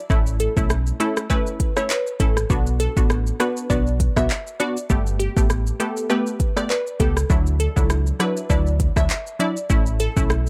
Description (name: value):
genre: dancehall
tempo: 100 BPM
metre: 4/4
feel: swing 56% on 16ths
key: unclear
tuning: A4 = 437 Hz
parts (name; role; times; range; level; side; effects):
- punchy chord stab; accompaniment; 0.1-10.5 s; F#3 to G4; -27 LUFS; equal; chorus, sidechain pumping
- sub bass with octave; bass; 0.1-10.5 s; G1 to D2; -24 LUFS; equal; none
- afro-pop drum kit; drums; 0.1-10.5 s; handclaps, hi-hat, kick drum, rim click, shaker; -24 LUFS; equal; none
- glassy wavetable pluck; melody; 0.4-10.1 s; G4 to E5; -30 LUFS; equal; chorus
room: little or no reverb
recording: none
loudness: -21 LUFS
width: mono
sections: 0.0-10.5 A section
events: none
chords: 0.1 A; 2.5 Bm; 4.9 Gadd9; 7.3 Dadd9; 9.7 A